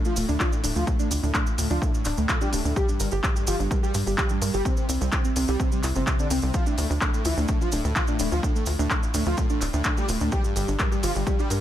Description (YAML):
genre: melodic techno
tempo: 127 BPM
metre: 4/4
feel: straight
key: D minor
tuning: A4 = 441 Hz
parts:
  - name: airy dreamy lead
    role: second line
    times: 0.0-11.6 s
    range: G2 to G3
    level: -34 LUFS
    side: equal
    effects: chorus, sidechain pumping, digital delay
  - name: soft round pluck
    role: arpeggios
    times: 0.0-11.5 s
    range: G3 to Bb4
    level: -31 LUFS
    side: right 1 dB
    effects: chorus, sidechain pumping, digital delay
  - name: cabasa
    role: percussion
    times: 0.0-11.6 s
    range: none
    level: -36 LUFS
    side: right 5 dB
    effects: none
  - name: mellow synth brass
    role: melody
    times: 0.1-11.6 s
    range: G3 to G4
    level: -31 LUFS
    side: equal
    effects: chorus, sidechain pumping, digital delay
  - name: tight sequencer bass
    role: bass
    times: 0.2-11.6 s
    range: D1 to G2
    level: -26 LUFS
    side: equal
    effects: sidechain pumping
  - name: punchy analog drum machine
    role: drums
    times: 0.2-11.6 s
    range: handclaps, hi-hat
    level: -30 LUFS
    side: left 1 dB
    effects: sidechain pumping on hats, sidechain pumping on toms, sidechain pumping on cymbals
  - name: electronic kick drum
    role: drums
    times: 0.4-11.4 s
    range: none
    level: -26 LUFS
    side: equal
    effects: none
room: digital ambience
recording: none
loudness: -22 LUFS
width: side -12 dB against mid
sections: 0.0-11.6 A section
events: none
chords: 0.0 Dm; 2.8 G5; 4.7 C5; 6.5 Dm; 10.3 G5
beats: 0.40 | 0.87 1.34 1.82 2.29 | 2.76 3.23 3.71 4.18 | 4.65 5.12 5.60 6.07 | 6.54 7.01 7.49 7.96 | 8.43 8.90 9.38 9.85 | 10.32 10.79 11.27